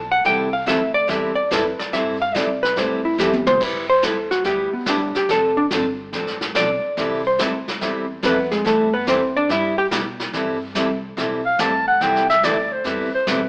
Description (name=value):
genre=country, western swing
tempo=143 BPM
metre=4/4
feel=swing 67% on 8ths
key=C major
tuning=A4 = 440 Hz
part: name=hollow-body jazz guitar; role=melody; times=0.0-9.9 s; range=Ab3 to A5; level=-22 LUFS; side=equal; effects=none
part: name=upright bass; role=bass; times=0.0-13.5 s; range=F1 to C3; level=-37 LUFS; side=equal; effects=none
part: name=picked steel-string acoustic guitar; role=accompaniment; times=0.2-13.4 s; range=C3 to A4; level=-26 LUFS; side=equal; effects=none
part: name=vintage brush drum kit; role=drums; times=0.2-13.5 s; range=brushed snare drum, crash cymbal, hi-hat, kick drum, snare drum, toms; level=-29 LUFS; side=equal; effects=none
part: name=breathy clarinet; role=second line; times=11.5-13.5 s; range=B4 to A5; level=-20 LUFS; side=equal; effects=none
room=wet stone room reverb, RT60 1.3 s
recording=band playing live in one room, AM radio sound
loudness=-20 LUFS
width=mono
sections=0.0-10.3 A section; 10.3-13.5 A section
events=hollow-body jazz guitar solo 0.0-10.3; drum fill 3.2-3.6; clarinet solo 10.3-13.5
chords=0.2 C6; 3.6 G6; 5.3 F6; 7.0 C6; 9.5 G6; 10.3 C6